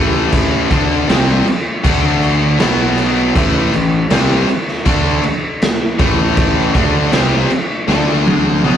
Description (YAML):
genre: quiet-loud alternative rock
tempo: 79 BPM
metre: 4/4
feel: straight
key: A minor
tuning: A4 = 441 Hz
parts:
  - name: distorted electric guitar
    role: riff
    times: 0.0-8.8 s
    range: A2 to D4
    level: -18 LUFS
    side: left 5 dB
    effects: overdrive
  - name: thick fuzz guitar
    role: riff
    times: 0.0-8.8 s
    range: A2 to D4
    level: -19 LUFS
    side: right 3 dB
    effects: distortion
  - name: fuzz fingered electric bass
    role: bass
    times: 0.0-8.8 s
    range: A1 to D2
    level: -19 LUFS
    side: equal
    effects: overdrive
  - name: raw garage drum kit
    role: drums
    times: 0.3-8.8 s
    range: crash cymbal, kick drum, snare drum, toms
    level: -16 LUFS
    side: equal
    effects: none
room: moderate stone room reverb, RT60 1.1 s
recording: rough rehearsal-room recording, tube saturation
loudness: -12 LUFS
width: side -9 dB against mid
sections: 0.0-8.8 A section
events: drum fill 7.9-8.8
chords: 0.0 Am; 1.8 D5; 2.6 B5; 3.4 Am; 7.9 D5